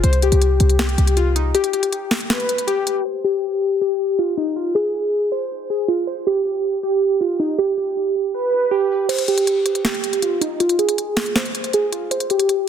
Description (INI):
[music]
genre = hip hop, trap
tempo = 159 BPM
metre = 4/4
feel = half-time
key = C harmonic minor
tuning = A4 = 440 Hz
[part]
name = glassy digital keys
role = melody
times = 0.0-12.7 s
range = Eb4 to C5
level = -18 LUFS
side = equal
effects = chorus, low-pass filter, ping-pong delay
[part]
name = short 808-style bass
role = bass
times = 0.0-1.5 s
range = C2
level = -16 LUFS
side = equal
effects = none
[part]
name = trap drum kit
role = drums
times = 0.0-3.0, 9.1-12.6 s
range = crash cymbal, hi-hat, snare drum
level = -22 LUFS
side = equal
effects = none
[sound]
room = light reverb, digital ambience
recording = dense, heavily limited modern master, low-pass filter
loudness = -17 LUFS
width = side -8 dB against mid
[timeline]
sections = 0.0-3.1 A section; 3.1-9.1 B section; 9.1-12.7 C section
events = break 1.5-3.1; filter sweep 3.1-9.1; kick muted 9.1-12.7; filter sweep on synth keys 9.1-12.7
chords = 0.0 C5; 1.5 N.C.